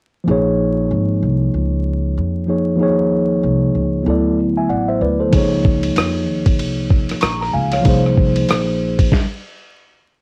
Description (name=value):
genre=hip hop, jazz-hop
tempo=95 BPM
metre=4/4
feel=swing 60% on 16ths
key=Bb minor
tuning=A4 = 439 Hz
part: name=mellow tine electric piano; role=accompaniment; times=0.2-9.1 s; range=F3 to Db6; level=-19 LUFS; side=equal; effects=cassette tape
part: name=upright bass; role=bass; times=0.3-9.1 s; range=Ab1 to F2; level=-23 LUFS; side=equal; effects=none
part: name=dusty soul sampler-style drum kit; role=drums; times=5.3-9.3 s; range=hi-hat, kick drum, ride cymbal, rim click, snare drum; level=-20 LUFS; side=equal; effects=cassette tape
room=moderate studio reverb, RT60 0.6 s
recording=home recording on cassette, vinyl crackle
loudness=-17 LUFS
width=mono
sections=0.3-10.2 A section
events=stop 9.1-10.2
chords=0.3 Bbm7; 2.8 Eb5; 4.1 Dadd9; 5.3 Dbmaj9; 7.9 Bbm11; 9.1 N.C.